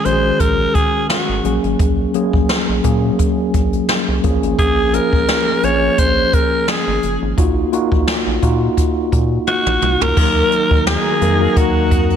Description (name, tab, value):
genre	1980s-style pop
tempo	86 BPM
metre	4/4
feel	swing 55% on 16ths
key	unclear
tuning	A4 = 440 Hz
part	breathy alto saxophone	melody	0.0-12.2 s	Gb4 to Db5	-17 LUFS	equal	digital delay
part	mellow tine electric piano	accompaniment	0.0-12.2 s	Eb3 to Bb4	-18 LUFS	left 1 dB	medium stereo tremolo
part	jazz brush drum kit	drums	0.0-12.2 s	crash cymbal, hi-hat, kick drum, snare drum, toms	-18 LUFS	equal	gated reverb
part	rubbery square bass	bass	0.1-12.2 s	Gb1 to Bb2	-20 LUFS	equal	none
part	ensemble organ-string	sustained chords	10.2-12.2 s	Eb3 to Bb4	-23 LUFS	left 1 dB	ensemble chorus
room	light reverb, small room reverb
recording	none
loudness	-13 LUFS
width	side -8 dB against mid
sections	0.0-10.2 A section; 10.2-12.2 B section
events	drum fill 9.5-10.2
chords	0.0 Absus4; 1.4 Gbadd9; 4.2 Bbm7; 7.4 Ebmadd9/Bb; 10.2 Ebm